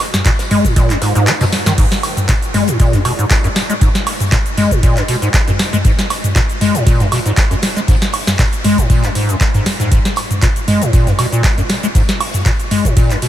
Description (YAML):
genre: acid house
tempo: 118 BPM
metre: 4/4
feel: swing 54% on 16ths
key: G# minor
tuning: A4 = 440 Hz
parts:
  - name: booming analog drum machine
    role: drums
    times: 0.0-13.3 s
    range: cabasa, crash cymbal, handclaps, hi-hat, snare drum, toms, woodblock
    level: -17 LUFS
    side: equal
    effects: overdrive
  - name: damped 70s drum kit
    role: drums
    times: 0.0-13.3 s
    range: hi-hat, snare drum, tambourine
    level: -32 LUFS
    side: left 3 dB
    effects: none
  - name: acid bass, square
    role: riff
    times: 0.3-13.3 s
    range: F#2 to G#3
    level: -16 LUFS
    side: left 1 dB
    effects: overdrive, lush chorus, ping-pong delay
  - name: electronic kick drum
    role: drums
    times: 0.3-13.1 s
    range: none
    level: -14 LUFS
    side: equal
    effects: overdrive
room: light reverb, studio ambience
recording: none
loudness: -11 LUFS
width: side -12 dB against mid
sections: 0.0-13.3 A section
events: kick drops out 1.3-1.8; drum fill 1.5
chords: none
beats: 0.26 0.76 1.27 | 1.78 2.29 2.80 3.31 | 3.81 4.32 4.83 5.34 | 5.85 6.36 6.87 7.37 | 7.88 8.39 8.90 9.41 | 9.92 10.42 10.93 11.44 | 11.95 12.46 12.97